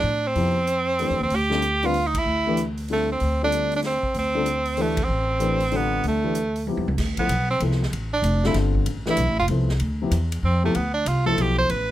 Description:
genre	modal jazz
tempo	190 BPM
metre	3/4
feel	swing 64% on 8ths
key	D dorian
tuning	A4 = 440 Hz
part	bright tenor saxophone	melody	0.0-11.9 s	A3 to C5	-23 LUFS	right 2 dB	none
part	warm baby grand piano	accompaniment	0.0-11.7 s	B2 to C5	-27 LUFS	left 4 dB	none
part	upright bass	bass	0.0-11.9 s	F1 to A2	-25 LUFS	equal	none
part	swinging big-band drum kit	drums	0.4-11.8 s	crash cymbal, hi-hat, kick drum, ride cymbal, snare drum, toms	-34 LUFS	right 1 dB	none
room	light reverb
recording	none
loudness	-20 LUFS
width	side -13 dB against mid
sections	0.0-7.0 A section; 7.0-11.9 B section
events	band accent 2.1, 4.9; drum fill 6.7-7.0; tenor saxophone solo 7.0-11.9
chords	0.0 Dm9

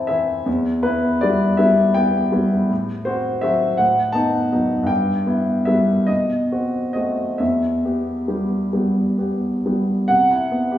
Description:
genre	classical, romantic character piece for solo piano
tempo	42-56 BPM (dotted quarters)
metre	6/8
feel	rubato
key	E minor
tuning	A4 = 440 Hz
part	warm grand piano	solo	0.0-10.8 s	E2 to A5	-17 LUFS	equal	none
room	wet recital hall reverb, RT60 1.3 s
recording	recorded in a church or concert hall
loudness	-17 LUFS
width	side -12 dB against mid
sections	0.0-10.1 A section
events	none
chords	0.5 Em; 2.7 F#dim/A; 3.8 B7/A; 4.9 Em/G; 6.1 B7b9; 7.4 Em; 10.1 Cmaj7

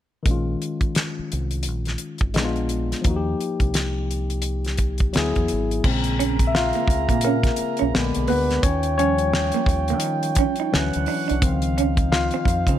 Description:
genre	R&B, neo-soul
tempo	86 BPM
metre	4/4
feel	swing 59% on 16ths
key	Bb dorian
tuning	A4 = 442 Hz
part	barky tine electric piano	accompaniment	0.2-12.8 s	Db3 to F5	-24 LUFS	left 4 dB	none
part	deep dub fingered electric bass	bass	0.3-12.8 s	Ab1 to Eb3	-25 LUFS	equal	none
part	damped 70s drum kit	drums	0.3-12.8 s	crash cymbal, hi-hat, kick drum, snare drum	-23 LUFS	equal	none
part	mellow brass ensemble	sustained chords	5.8-12.8 s	Eb4 to Cb6	-29 LUFS	right 8 dB	none
part	electric guitar through a small old amp	second line	6.2-12.8 s	Bb3 to Eb4	-26 LUFS	right 15 dB	tremolo
room	light reverb, small room ambience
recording	none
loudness	-20 LUFS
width	side -11 dB against mid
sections	0.3-5.8 A section; 5.8-12.8 B section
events	tine electric piano solo 5.8-12.8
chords	0.3 Bbm7; 2.4 Bb7b9; 3.1 Ebadd9; 5.1 Dadd9; 5.8 Bbm7; 7.9 Bb7b9; 8.6 Eb9; 10.7 Dmaj9; 11.4 Dbmaj9

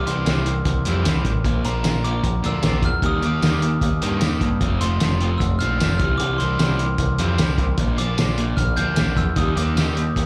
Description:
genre	indie rock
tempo	152 BPM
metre	4/4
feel	straight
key	unclear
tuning	A4 = 441 Hz
part	glockenspiel with hard plastic mallets	melody	0.0-10.3 s	Bb5 to G6	-30 LUFS	equal	slapback echo
part	raw garage guitar	riff	0.0-10.3 s	Bb2 to C4	-28 LUFS	equal	overdrive, slapback echo
part	growling picked electric bass	bass	0.0-10.3 s	F1 to G2	-25 LUFS	equal	overdrive
part	distorted electric guitar	riff	0.1-10.0 s	D3 to G4	-33 LUFS	equal	distortion, lush chorus, slapback echo, digital delay
part	cloth-damped thuddy drum kit	drums	0.1-10.3 s	hi-hat, kick drum, snare drum, tambourine	-26 LUFS	equal	none
room	small room ambience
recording	live gig heard through the venue's PA, club reverb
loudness	-20 LUFS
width	mono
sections	0.0-10.3 A section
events	none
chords	0.0 C5; 1.4 Bb; 3.0 Ebmaj7; 4.6 F; 6.0 C5; 7.8 Bb6; 9.4 Ebmaj7

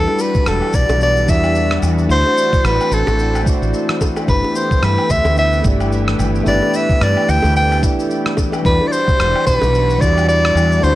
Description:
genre	sunset chillout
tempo	110 BPM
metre	4/4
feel	swing 57% on 16ths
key	G major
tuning	A4 = 438 Hz
part	edgy soprano saxophone	melody	0.0-10.9 s	A4 to G5	-17 LUFS	equal	analog delay, shimmer reverb
part	tine electric piano	accompaniment	0.0-10.9 s	G3 to D5	-22 LUFS	equal	auto-pan, shimmer reverb
part	lush unison pad	sustained chords	0.0-10.9 s	E3 to G4	-24 LUFS	equal	chorus, shimmer reverb
part	woody fretless electric bass	bass	0.0-10.9 s	E1 to G2	-17 LUFS	equal	none
part	bongos	percussion	0.1-9.7 s	none	-24 LUFS	right 1 dB	none
part	electronic shaker, rim click and woodblock	drums	0.2-10.9 s	none	-26 LUFS	left 1 dB	none
part	electronic kick drum	drums	0.3-10.1 s	none	-17 LUFS	equal	none
room	light reverb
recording	dry, gritty hardware recording, cassette tape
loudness	-13 LUFS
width	side -15 dB against mid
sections	0.0-10.9 A section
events	none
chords	0.0 Em9; 2.1 D9; 4.3 G69; 8.6 Em9

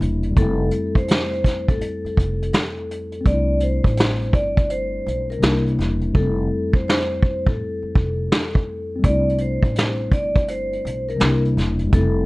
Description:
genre	lo-fi hip hop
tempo	83 BPM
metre	4/4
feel	swing 64% on 16ths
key	C major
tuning	A4 = 440 Hz
part	mellow tine electric piano	accompaniment	0.0-12.3 s	F2 to E4	-25 LUFS	left 2 dB	none
part	upright bass	bass	0.0-12.2 s	E1 to C2	-23 LUFS	equal	none
part	vintage brush drum kit	drums	0.0-12.1 s	hi-hat, kick drum, snare drum	-18 LUFS	equal	none
part	vibraphone with medium mallets	melody	0.4-12.3 s	A4 to D5	-25 LUFS	equal	none
room	light reverb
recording	dark, warm production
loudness	-18 LUFS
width	side -22 dB against mid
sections	0.0-12.3 A section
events	hi-hats muted 6.1-9.0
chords	0.4 Fmaj7; 3.3 C6; 5.4 C7; 6.1 Fmaj7; 9.0 C6; 11.2 C7

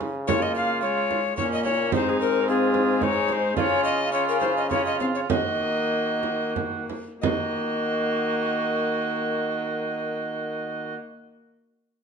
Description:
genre	classical, renaissance-style consort dance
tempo	88-110 BPM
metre	3/4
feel	straight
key	Eb dorian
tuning	A4 = 440 Hz
part	rich viola	accompaniment	0.0-11.0 s	Ab3 to Db4	-30 LUFS	left 3 dB	none
part	brilliant trombone	bass	0.0-11.0 s	Ab2 to Eb3	-30 LUFS	right 2 dB	none
part	frame drum	percussion	0.0-7.5 s	none	-29 LUFS	right 5 dB	none
part	alto recorder	melody	0.3-11.0 s	Ab4 to F5	-26 LUFS	left 4 dB	none
part	mellow cor anglais	second line	0.3-11.0 s	Db4 to Gb4	-29 LUFS	right 6 dB	none
room	wet stone room reverb, RT60 1.2 s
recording	nothing above 10.8 kHz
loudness	-22 LUFS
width	side -6 dB against mid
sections	0.0-7.2 A section; 7.2-11.3 B section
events	slowing down 2.8-7.2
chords	0.0 Db; 1.9 Ab; 3.6 Db; 5.3 Ebm

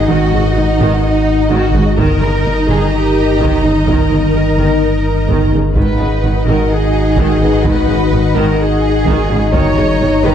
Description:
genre	cinematic, hybrid orchestral and electronic film score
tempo	127 BPM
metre	4/4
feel	straight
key	G# minor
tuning	A4 = 440 Hz
part	warm symphonic violin section	second line	0.0-10.3 s	D#5 to A#5	-23 LUFS	left 1 dB	none
part	rich symphonic viola section	accompaniment	0.0-10.3 s	C#3 to D#4	-19 LUFS	right 1 dB	none
part	warbly tape-like pad	sustained chords	0.0-10.3 s	D#3 to D#5	-16 LUFS	left 2 dB	chorus, built-in reverb, phaser
part	rich symphonic cello section	bass	0.0-10.3 s	D#4 to C#5	-19 LUFS	right 1 dB	none
part	sub bass with octave	bass	0.0-10.3 s	G1 to G#1	-17 LUFS	equal	none
part	felt-muted upright piano	texture	0.0-10.3 s	B3 to D#5	-30 LUFS	left 3 dB	none
part	rich symphonic double bass section	bass	0.1-10.3 s	G1 to G#1	-19 LUFS	right 3 dB	none
part	taiko ensemble	drums	2.0-10.0 s	none	-20 LUFS	equal	none
room	wet scoring stage reverb, RT60 1.6 s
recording	dark, warm production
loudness	-10 LUFS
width	side -9 dB against mid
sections	0.0-10.3 A section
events	none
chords	0.0 G#m7; 2.0 D#/G; 5.8 G#m7; 9.5 D#/G

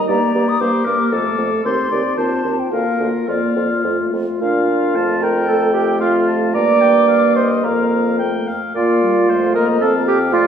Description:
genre	quick classical-period movement for wind quintet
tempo	104-117 BPM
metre	2/4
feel	rubato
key	Bb major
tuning	A4 = 440 Hz
part	mellow hollow silver concert flute	melody	0.0-10.5 s	D5 to Eb6	-23 LUFS	left 5 dB	none
part	warm oboe	second line	0.0-10.5 s	F4 to Bb5	-23 LUFS	left 2 dB	none
part	dark French horn	accompaniment	0.0-10.5 s	G3 to D4	-21 LUFS	left 1 dB	none
part	warm clarinet	accompaniment	0.0-10.5 s	F4 to D5	-18 LUFS	right 4 dB	none
part	mellow bassoon	bass	0.0-10.5 s	D2 to Bb2	-21 LUFS	right 1 dB	none
room	wet concert hall reverb, RT60 1.8 s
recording	heard from further back in the room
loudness	-14 LUFS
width	side -8 dB against mid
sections	0.0-4.4 A section; 4.4-10.5 B section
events	none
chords	0.1 Gm; 1.1 Dm/F; 1.6 Cm/Eb; 2.2 F7/Eb; 2.7 Bb/D; 3.3 Bb/F; 3.9 F; 4.4 Bb; 5.0 F; 6.5 Gm; 7.6 Bb5/F; 8.2 F; 8.8 Bb; 9.3 F

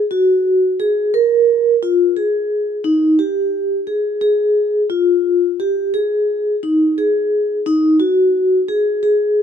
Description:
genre	progressive instrumental, progressive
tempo	175 BPM (eighths)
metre	7/8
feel	straight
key	unclear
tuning	A4 = 444 Hz
part	vibraphone with soft mallets	solo	0.1-9.4 s	Eb4 to Bb4	-14 LUFS	equal	none
room	light reverb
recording	none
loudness	-14 LUFS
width	side -8 dB against mid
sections	0.0-9.4 A section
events	none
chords	none

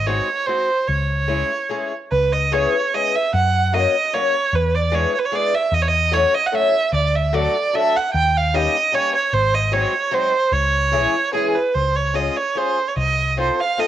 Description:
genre	musette waltz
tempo	149 BPM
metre	3/4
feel	rubato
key	C# minor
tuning	A4 = 440 Hz
part	rich violin	melody	0.0-13.9 s	G#4 to G5	-18 LUFS	right 4 dB	plate reverb
part	hollow-body short-scale picked electric bass	bass	0.0-13.5 s	G#1 to F#2	-21 LUFS	left 1 dB	none
part	picked old ladder-braced acoustic guitar	accompaniment	0.1-13.9 s	E3 to A#4	-23 LUFS	left 8 dB	cassette tape, plate reverb
room	moderate studio reverb, RT60 0.6 s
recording	home recording on cassette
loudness	-16 LUFS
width	side -11 dB against mid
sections	0.0-2.1 A section; 2.1-11.7 A section; 11.7-13.9 B section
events	none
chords	0.0 G#7; 0.9 C#m; 2.1 C#m7; 3.3 F#; 4.5 E7; 5.7 A6/E; 6.9 D; 8.1 D#7; 9.3 G#7; 10.5 C#m; 11.7 Db; 13.0 F7/C

